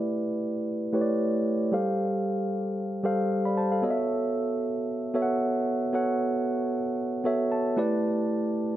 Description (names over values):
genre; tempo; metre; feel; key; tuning
amapiano; 114 BPM; 4/4; swing 55% on 16ths; B minor; A4 = 441 Hz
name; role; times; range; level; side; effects
mellow tine electric piano; solo; 0.0-8.8 s; G3 to B5; -25 LUFS; right 1 dB; low-pass filter
room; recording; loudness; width
light reverb, digital ambience; none; -25 LUFS; side -12 dB against mid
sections
0.0-8.8 A section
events
filter sweep on tine electric piano 0.0-8.8; tine electric piano fill 7.3-8.0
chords
0.0 A9sus4; 1.7 G9sus4; 3.8 B9sus4; 7.8 A9sus4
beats
0.15 0.67 1.20 | 1.73 2.25 2.78 3.31 | 3.83 4.36 4.88 5.41 | 5.94 6.46 6.99 7.51 | 8.04 8.57